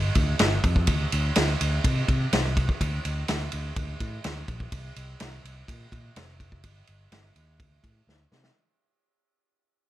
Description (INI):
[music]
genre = blues rock power trio and southern rock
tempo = 125 BPM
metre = 4/4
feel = straight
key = unclear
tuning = A4 = 440 Hz
[part]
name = picked electric bass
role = bass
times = 0.0-8.5 s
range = F1 to C3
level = -28 LUFS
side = equal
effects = none
[part]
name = vintage drum kit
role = drums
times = 0.2-8.5 s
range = kick drum, ride cymbal, snare drum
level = -25 LUFS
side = equal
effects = none
[sound]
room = little or no reverb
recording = none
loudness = -23 LUFS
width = side -14 dB against mid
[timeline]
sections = 0.0-8.6 A section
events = fade-out 0.0-8.6; drum fill 8.1-8.6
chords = none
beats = 0.40 | 0.88 1.36 1.84 2.33 | 2.81 3.29 3.77 4.25 | 4.73 5.21 5.68 6.16 | 6.64 7.12 7.60 8.08